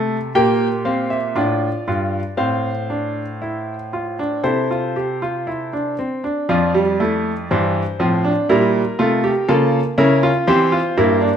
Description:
classical, baroque-style 4-part fugue for grand piano; 60 BPM; 4/4; straight; F major; A4 = 438 Hz
clear baby grand piano; solo; 0.0-11.4 s; F2 to G5; -16 LUFS; equal
wet stone room reverb, RT60 1.2 s; -16 LUFS; side -8 dB against mid
0.0-6.5 A section; 6.5-11.4 B section
0.4 Gm/Bb; 2.4 F/A; 4.4 C; 6.5 F; 8.5 Edim7/Bb; 10.5 C7
0.35 1.36 | 2.38 3.41 4.44 5.47 | 6.49 7.49 8.49 9.49 | 10.48

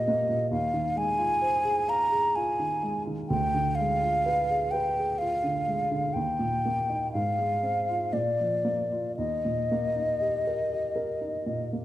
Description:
classical, romantic duo for flute and grand piano; 57-66 BPM; 3/4; rubato; Eb major; A4 = 440 Hz
mellow hollow concert flute; melody; 0.0-11.7 s; D5 to Bb5; -26 LUFS; equal
dark baby grand piano; accompaniment; 0.0-11.8 s; D2 to F5; -30 LUFS; right 2 dB
moderate recital hall reverb, RT60 1.7 s; dark, warm production; -25 LUFS; side -14 dB against mid
0.0-11.8 A section
0.0 Eb; 0.5 Fm7/Eb; 3.3 Ddim7; 6.2 Eb; 7.1 Fm/Ab; 8.2 Bb; 9.2 Eb
| 0.52 1.43 2.37 | 3.31 4.26 5.20 | 6.17 7.15 8.15 | 9.19 10.22 11.22

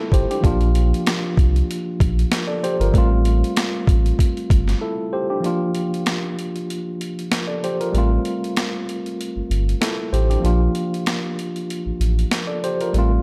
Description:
hip hop, boom-bap hip-hop; 96 BPM; 4/4; swing 55% on 16ths; A4 = 441 Hz
mellow tine electric piano; accompaniment; 0.0-13.2 s; F3 to D5; -25 LUFS; equal; overdrive, cassette tape
sub bass with octave; bass; 0.1-13.2 s; G1 to C2; -20 LUFS; equal
boom bap sampler-style drum kit; drums; 0.1-13.1 s; hi-hat, kick drum, snare drum; -23 LUFS; equal
digital ambience; -21 LUFS; mono
0.0-5.4 A section; 5.4-13.2 B section
break 4.8-5.4, 5.4-13.2
0.4 Bb; 2.9 Fadd9/A; 5.4 Bb; 7.9 Fadd9/A; 10.4 Bb
| 0.44 1.06 1.69 2.31 | 2.94 3.56 4.19 4.81 | 5.44 6.06 6.69 7.31 | 7.94 8.56 9.19 9.81 | 10.44 11.06 11.69 12.31 | 12.94

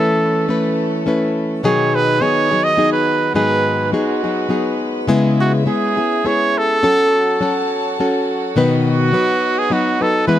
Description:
mexican folk, mariachi; 104 BPM; 3/4; swing 53% on 8ths, rubato; A4 = 440 Hz
clear trumpet; melody; 0.0-10.4 s; F#4 to D#5; -18 LUFS; right 2 dB; tape echo
nylon-string guitar; accompaniment; 0.0-10.4 s; G#2 to B4; -16 LUFS; left 2 dB
warm studio violin section; sustained chords; 0.0-10.4 s; G#3 to A5; -26 LUFS; equal
light reverb; close, detailed microphones; -14 LUFS; side -12 dB against mid
0.0-10.4 A section
0.0 Aadd9; 1.6 B6; 3.3 G#m7; 5.1 C#m7; 6.8 F#m; 8.6 B
0.48 1.06 | 1.64 2.21 2.78 | 3.35 3.92 4.50 | 5.09 5.67 6.26 | 6.84 7.42 7.99 | 8.56 9.13 9.70 | 10.27

